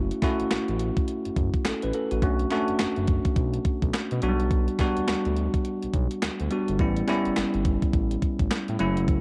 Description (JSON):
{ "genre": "R&B, new jack swing", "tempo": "105 BPM", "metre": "4/4", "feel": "swing 60% on 16ths", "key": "unclear", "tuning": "A4 = 442 Hz", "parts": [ { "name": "bell-like tine electric piano", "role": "accompaniment", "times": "0.0-9.2 s", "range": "F#3 to B4", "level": "-29 LUFS", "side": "equal", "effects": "none" }, { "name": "smooth synth bass", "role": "bass", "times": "0.0-9.2 s", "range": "F#1 to B2", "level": "-31 LUFS", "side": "equal", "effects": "none" }, { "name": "crisp 8-bit digital drum machine", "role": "drums", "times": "0.1-9.2 s", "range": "handclaps, hi-hat, kick drum, snare drum", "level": "-29 LUFS", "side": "equal", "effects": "overdrive" } ], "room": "light reverb", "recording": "dark, warm production", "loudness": "-26 LUFS", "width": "mono", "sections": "0.0-9.2 A section", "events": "none", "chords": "0.0 F#m7; 2.2 Bm7; 4.2 Gmaj7; 6.8 A7" }